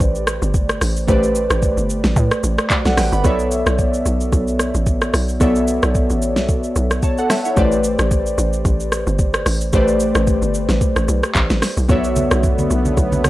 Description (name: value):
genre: amapiano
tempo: 111 BPM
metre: 4/4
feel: swing 55% on 16ths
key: unclear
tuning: A4 = 440 Hz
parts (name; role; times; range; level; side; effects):
- glassy digital keys; accompaniment; 0.0-13.3 s; A3 to B5; -19 LUFS; equal; chorus
- hollow log drum bass; bass; 0.0-13.3 s; G1 to A2; -20 LUFS; equal; none
- smooth R&B drum kit; drums; 0.0-13.3 s; handclaps, hi-hat, kick drum, rim click, shaker, snare drum; -19 LUFS; equal; none
- warm analog pad; sustained chords; 11.9-13.3 s; D3 to B3; -23 LUFS; left 1 dB; chorus
- congas; percussion; 11.9-13.3 s; none; -22 LUFS; right 1 dB; none
room: little or no reverb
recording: dry, gritty hardware recording, transformer saturation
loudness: -15 LUFS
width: side -16 dB against mid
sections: 0.0-13.3 A section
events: none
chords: 0.0 Am11; 3.2 Bm11; 7.6 Am11; 11.9 Bm11